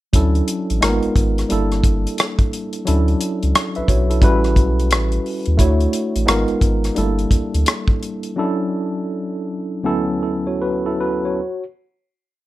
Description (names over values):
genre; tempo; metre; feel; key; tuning
R&B, neo-soul; 87 BPM; 4/4; swing 63% on 16ths, uneven beats; D major; A4 = 439 Hz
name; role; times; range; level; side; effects
tine electric piano; accompaniment; 0.1-11.6 s; D2 to E5; -20 LUFS; equal; medium stereo tremolo
round analog bass; bass; 0.1-7.6 s; G1 to Eb2; -18 LUFS; equal; none
warm soul drum kit; drums; 0.1-8.4 s; hi-hat, kick drum, rim click; -17 LUFS; equal; none
room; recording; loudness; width
little or no reverb; none; -16 LUFS; side -16 dB against mid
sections
0.1-11.4 A section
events
slowing down 5.6-11.4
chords
0.1 Dmaj9; 0.8 G#m6; 1.5 Gm6; 2.9 Dmaj9; 4.2 A13; 5.6 Dmaj9; 6.3 G#m6; 7.0 Gm6; 8.4 Dmaj9; 9.8 Dmaj13